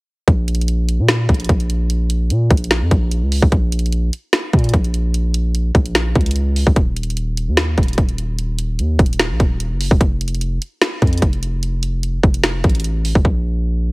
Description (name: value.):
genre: hip hop, trap.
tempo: 148 BPM.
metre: 4/4.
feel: half-time.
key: unclear.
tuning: A4 = 440 Hz.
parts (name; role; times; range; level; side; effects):
long sustained 808-style bass; bass; 0.3-13.9 s; Eb1 to Bb2; -18 LUFS; equal; none.
trap drum kit; drums; 0.3-13.3 s; hi-hat, kick drum, snare drum; -15 LUFS; equal; none.
room: little or no reverb.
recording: heavily compressed radio sound.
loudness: -15 LUFS.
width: side -25 dB against mid.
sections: 0.3-13.2 A section.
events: hi-hats muted 13.2-13.9.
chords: none.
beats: | 0.28 0.68 1.09 1.49 | 1.90 2.30 2.71 3.11 | 3.52 3.92 4.33 4.74 | 5.14 5.55 5.95 6.36 | 6.76 7.17 7.57 7.98 | 8.38 8.79 9.20 9.60 | 10.01 10.41 10.82 11.22 | 11.63 12.03 12.44 12.84 | 13.25 13.65.